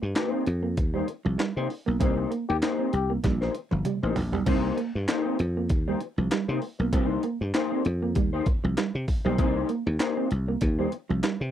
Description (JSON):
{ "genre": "funk", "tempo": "98 BPM", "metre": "4/4", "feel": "swing 56% on 16ths", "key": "C minor", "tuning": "A4 = 440 Hz", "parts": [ { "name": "mellow electric guitar", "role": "accompaniment", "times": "0.0-11.4 s", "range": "Bb3 to C5", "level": "-30 LUFS", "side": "left 5 dB", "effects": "ensemble chorus" }, { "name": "dry thumbed slap bass", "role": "bass", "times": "0.0-11.5 s", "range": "G1 to C3", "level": "-27 LUFS", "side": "equal", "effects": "none" }, { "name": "breakbeat sampler-style drum kit", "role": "drums", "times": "0.2-11.4 s", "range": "crash cymbal, handclaps, hi-hat, kick drum, snare drum, toms", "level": "-27 LUFS", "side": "equal", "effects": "none" }, { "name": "electric guitar at the edge of break-up", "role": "riff", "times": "0.3-11.4 s", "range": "F3 to C4", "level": "-30 LUFS", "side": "right 6 dB", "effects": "warbly pitch drift" }, { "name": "breathy trombone", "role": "second line", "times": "2.5-3.1 s", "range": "G4", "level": "-27 LUFS", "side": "left 8 dB", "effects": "none" } ], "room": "little or no reverb", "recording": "dry, close 1970s-style studio recording", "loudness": "-24 LUFS", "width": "side -11 dB against mid", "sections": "0.0-4.5 A section; 4.5-11.5 B section", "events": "band accent 2.0-4.5; drum fill 3.2-4.5", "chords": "0.0 Cm7", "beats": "0.15 0.77 1.39 | 2.00 2.62 3.24 3.85 | 4.47 5.08 5.70 6.31 | 6.93 7.54 8.16 8.77 | 9.38 10.00 10.61 11.23" }